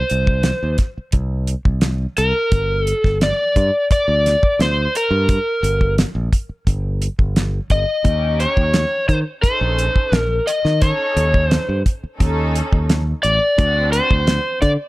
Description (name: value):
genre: straight-eighth soul blues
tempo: 87 BPM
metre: 4/4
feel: straight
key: G minor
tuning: A4 = 436 Hz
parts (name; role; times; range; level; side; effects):
- overdriven slide guitar; melody; 0.0-14.7 s; Bb4 to Eb5; -18 LUFS; left 1 dB; plate reverb
- modern bright fingered electric bass; bass; 0.1-14.8 s; G1 to Eb3; -19 LUFS; equal; none
- damped 70s drum kit; drums; 0.1-14.8 s; hi-hat, kick drum, snare drum; -17 LUFS; equal; none
- muted studio string section; sustained chords; 8.1-14.3 s; C4 to A4; -28 LUFS; equal; plate reverb
room: light reverb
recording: none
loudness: -15 LUFS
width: side -19 dB against mid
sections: 0.0-14.9 A section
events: none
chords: 0.0 N.C.; 2.5 Gm; 8.1 Eb7; 13.6 D7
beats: 0.45 1.14 1.83 | 2.52 3.21 3.90 4.60 | 5.29 5.98 6.67 7.36 | 8.05 8.74 9.44 10.13 | 10.82 11.51 12.21 12.90 | 13.59 14.28